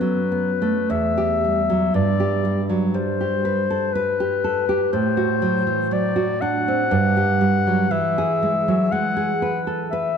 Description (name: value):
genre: romantic duo for clarinet and classical guitar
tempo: 60 BPM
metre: 3/4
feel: rubato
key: unclear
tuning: A4 = 440 Hz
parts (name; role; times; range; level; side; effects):
- mellow clarinet; melody; 0.0-10.2 s; B4 to F#5; -22 LUFS; left 5 dB; none
- nylon-string guitar; accompaniment; 0.0-10.2 s; E2 to B4; -21 LUFS; right 3 dB; none
room: wet concert hall reverb, RT60 2.5 s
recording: dark, warm production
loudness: -18 LUFS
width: side -7 dB against mid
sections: 0.0-10.2 A section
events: none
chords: 0.0 B5/F#; 0.9 Em; 2.0 G; 4.9 D7/A; 6.9 N.C.; 7.9 E